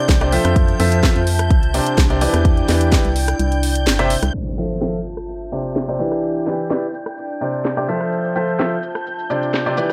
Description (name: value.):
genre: piano house.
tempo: 127 BPM.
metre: 4/4.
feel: straight.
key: C major.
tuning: A4 = 442 Hz.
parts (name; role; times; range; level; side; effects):
string machine, violins; sustained chords; 0.0-9.9 s; G6; -32 LUFS; equal; ensemble chorus, sidechain pumping.
clear upright piano; riff; 0.0-9.9 s; C3 to E5; -23 LUFS; equal; sidechain pumping, analog delay.
warbly tape-like pad; texture; 0.0-9.9 s; D4 to A5; -30 LUFS; equal; chorus, built-in reverb, sidechain pumping.
organ-like FM bass; bass; 0.1-4.3 s; G1 to F2; -21 LUFS; equal; sidechain pumping.
electronic kick drum; drums; 0.1-3.0 s; none; -18 LUFS; equal; none.
house drum kit; drums; 0.1-9.9 s; crash cymbal, hi-hat, rim click, shaker, snare drum; -25 LUFS; equal; none.
impact; sound effects; 4.3-6.2 s; none; -32 LUFS; equal; none.
room: light reverb.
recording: dry, gritty hardware recording, low-pass filter.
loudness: -18 LUFS.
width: mono.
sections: 0.0-4.3 A section; 4.3-9.9 B section.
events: kick drops out 3.4-4.3; impact 4.3-6.2; filter sweep on string machine 4.3-9.9; filter sweep 4.3-9.9.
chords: 0.0 Csus2; 0.6 Fmaj7; 1.5 Csus2; 4.3 Fmaj7; 5.3 Csus2; 6.2 Em7; 6.9 Csus2; 8.1 Fmaj7; 9.1 Csus2.